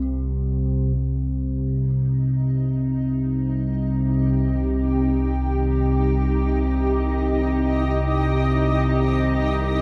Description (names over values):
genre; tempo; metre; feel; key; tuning
dark ambient drone; free time; none; none; C minor; A4 = 441 Hz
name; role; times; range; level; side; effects
dark detuned synth bell; arpeggios; 0.0-1.9 s; F4; -60 LUFS; equal; none
analog drone; drone; 0.0-9.8 s; C2 to C3; -22 LUFS; equal; chorus
granular cloud pad; sustained chords; 2.6-9.8 s; Eb4 to Eb5; -28 LUFS; equal; built-in reverb
room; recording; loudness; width
moderate huge ambient reverb, RT60 8.6 s; none; -22 LUFS; mono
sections
1.0-9.8 A section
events
fade-in on ambient pad 1.0-9.8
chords
0.0 Bbsus2/C; 1.0 Cm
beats
free time